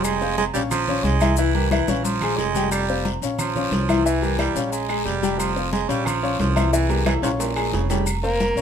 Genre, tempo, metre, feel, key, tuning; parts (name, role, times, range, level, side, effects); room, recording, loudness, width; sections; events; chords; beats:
latin, salsa; 179 BPM; 4/4; straight; A4 = 440 Hz
raspy baritone saxophone; second line; 0.0-8.1 s; Bb2 to Ab3; -25 LUFS; right 7 dB
clear concert grand piano; accompaniment; 0.0-8.6 s; E3 to Ab5; -24 LUFS; left 5 dB
upright bass; bass; 0.0-8.6 s; F1 to C2; -25 LUFS; equal
agogo bells and timbales; percussion; 0.0-8.6 s; -30 LUFS; right 6 dB
claves; percussion; 0.0-8.2 s; -35 LUFS; right 4 dB
congas; percussion; 0.0-8.6 s; -28 LUFS; left 2 dB
guiro; percussion; 0.0-8.6 s; -36 LUFS; left 9 dB
maracas; percussion; 0.0-8.6 s; -34 LUFS; left 9 dB
clear tenor saxophone; melody; 8.2-8.6 s; Bb3; -21 LUFS; equal
light reverb; minimal, uncompressed stereo recording; -19 LUFS; side -8 dB against mid
0.0-8.1 A section
drum fill 1.9-2.7, 6.7-8.1
0.0 Fmadd9; 0.7 Bbm7; 1.4 C7; 2.0 Bbm7; 2.7 Fsus2; 3.4 Bbm; 4.1 C7; 4.7 Bbm7; 5.4 Fsus2; 6.1 Bbm; 6.7 C7; 7.4 Bbm7; 8.1 F5
| 0.04 0.38 0.71 1.04 | 1.38 1.71 2.05 2.38 | 2.72 3.05 3.39 3.72 | 4.05 4.39 4.72 5.06 | 5.39 5.73 6.06 6.40 | 6.73 7.06 7.40 7.73 | 8.07 8.40